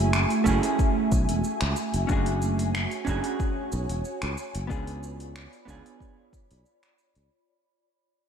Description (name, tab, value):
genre	sunset chillout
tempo	92 BPM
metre	4/4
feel	straight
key	unclear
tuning	A4 = 440 Hz
part	vintage hollow-body jazz guitar	accompaniment	0.0-7.3 s	A3 to G#4	-30 LUFS	moving between left 5 dB and right 5 dB	auto-pan, tape echo
part	ethereal airy pad	sustained chords	0.0-7.3 s	A3 to B5	-30 LUFS	right 2 dB	ensemble chorus, built-in reverb, vintage 12-bit sampler grit
part	sustaining fretless electric bass	bass	0.0-7.3 s	E1 to C#2	-28 LUFS	equal	none
part	deep house drum kit	drums	0.1-7.3 s	cabasa, finger snaps, hi-hat	-33 LUFS	equal	overdrive
part	electronic kick drum	drums	0.5-6.5 s	none	-27 LUFS	equal	overdrive
room	moderate lush hall reverb, RT60 1.9 s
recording	big arena sound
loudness	-24 LUFS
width	side -8 dB against mid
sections	0.0-7.3 A section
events	fade-out 0.4-7.3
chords	0.0 F#m9; 2.1 E13/F# (rootless); 4.7 C#7b9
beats	0.14 0.79 1.45 | 2.10 2.75 3.40 4.05 | 4.71 5.36 6.01 6.66